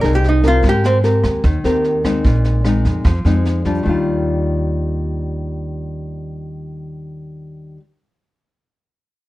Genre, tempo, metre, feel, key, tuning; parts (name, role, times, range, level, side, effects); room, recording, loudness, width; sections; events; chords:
bossa nova; 150 BPM; 4/4; straight; Eb major; A4 = 435 Hz
archtop guitar, miked and amplified; melody; 0.0-1.0 s; C4 to Bb4; -17 LUFS; right 1 dB
nylon-string guitar; accompaniment; 0.0-7.8 s; Bb2 to Bb4; -20 LUFS; left 2 dB
upright bass; bass; 0.0-7.8 s; Bb1 to Ab2; -18 LUFS; equal
jazz brush drum kit; drums; 0.0-3.7 s; kick drum, rim click, snare drum; -23 LUFS; equal
light reverb; dark, warm production; -14 LUFS; side -17 dB against mid
0.0-3.8 A section; 3.8-7.1 B section
hollow-body jazz guitar solo 0.0-3.8
0.0 Fm7; 0.6 Abmaj9; 2.2 Bb9sus4; 3.8 Ebmaj9